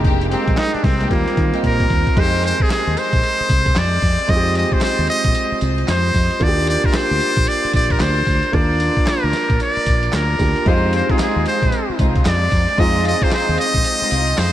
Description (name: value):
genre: R&B, new jack swing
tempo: 113 BPM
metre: 4/4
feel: swing 62% on 16ths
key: F dorian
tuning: A4 = 442 Hz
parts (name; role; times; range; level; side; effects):
- clear concert grand piano; accompaniment; 0.0-14.5 s; G3 to Bb4; -23 LUFS; right 2 dB; none
- warm studio string section; stabs; 0.0-1.7, 10.7-14.2 s; Ab3 to G4; -25 LUFS; left 1 dB; none
- fingered electric bass; bass; 0.0-14.5 s; F1 to Eb3; -20 LUFS; equal; none
- dusty soul sampler-style drum kit; drums; 0.0-14.5 s; crash cymbal, handclaps, hi-hat, kick drum, snare drum, tambourine; -20 LUFS; equal; none
- trumpet with metal mute; melody; 0.3-14.5 s; Bb3 to Eb5; -19 LUFS; equal; none
room: moderate huge ambient reverb, RT60 6.9 s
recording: dreamy mix soaked in reverb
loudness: -14 LUFS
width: side -12 dB against mid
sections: 0.0-2.2 A section; 2.2-14.5 B section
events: drum fill 1.6-2.2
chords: 0.0 Fm11; 1.1 Eb6; 2.2 Fm7; 6.4 Ebmaj7; 10.7 Fm7